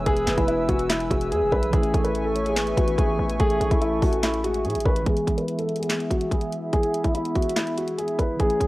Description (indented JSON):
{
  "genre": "hip hop, trap",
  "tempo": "144 BPM",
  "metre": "4/4",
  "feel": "half-time",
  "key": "E major",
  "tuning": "A4 = 439 Hz",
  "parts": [
    { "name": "soft octave-layered synth lead", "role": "second line", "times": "0.0-4.6 s", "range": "G#4 to C#5", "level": "-29 LUFS", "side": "left 1 dB", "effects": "chorus, phaser, tape echo" },
    { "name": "mellow tine electric piano", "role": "accompaniment", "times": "0.0-8.7 s", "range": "E3 to G#4", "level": "-32 LUFS", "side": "right 1 dB", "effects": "medium stereo tremolo, low-pass filter" },
    { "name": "hollow soft pad", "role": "sustained chords", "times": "0.0-8.7 s", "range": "A3 to E6", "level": "-31 LUFS", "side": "right 1 dB", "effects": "chorus, low-pass filter" },
    { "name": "distorted 808-style bass", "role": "bass", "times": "0.0-5.1 s", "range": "E1 to A2", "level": "-28 LUFS", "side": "equal", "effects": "distortion" },
    { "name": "dark grand piano", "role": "melody", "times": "0.1-8.7 s", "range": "E4 to B4", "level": "-25 LUFS", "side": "equal", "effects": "low-pass filter, cassette tape" },
    { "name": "trap drum kit", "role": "drums", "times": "0.1-8.7 s", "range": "handclaps, hi-hat, kick drum, snare drum", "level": "-25 LUFS", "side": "equal", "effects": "cassette tape" }
  ],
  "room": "digital ambience",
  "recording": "home recording on cassette",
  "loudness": "-21 LUFS",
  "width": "side -18 dB against mid",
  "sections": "0.0-5.1 A section; 5.1-8.7 B section",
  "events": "filter sweep 5.1-8.7",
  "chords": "0.0 E; 1.7 Amaj7; 5.1 E",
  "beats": "| 0.06 0.48 0.90 1.31 | 1.73 2.15 2.56 2.98 | 3.40 3.81 4.23 4.65 | 5.06 5.48 5.90 6.31 | 6.73 7.15 7.56 7.98 | 8.40"
}